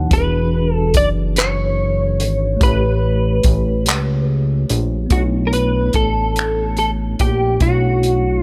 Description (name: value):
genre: slow six-eight R&B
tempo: 48 BPM (dotted quarters)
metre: 6/8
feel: straight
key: B minor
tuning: A4 = 438 Hz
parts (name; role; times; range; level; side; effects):
- mellow tine electric piano; accompaniment; 0.0-8.4 s; B2 to A5; -26 LUFS; equal; none
- fat analog bass; bass; 0.0-8.4 s; E1 to C#2; -21 LUFS; equal; none
- clean electric guitar; melody; 0.1-8.4 s; F#4 to D5; -22 LUFS; equal; ensemble chorus, slapback echo
- warm soul drum kit; drums; 0.1-8.2 s; finger snaps, handclaps, hi-hat, kick drum; -20 LUFS; equal; none
room: small room ambience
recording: none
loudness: -17 LUFS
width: mono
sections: 0.0-5.1 A section; 5.1-8.4 B section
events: none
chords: 0.1 E13; 2.6 A9; 5.1 Bm11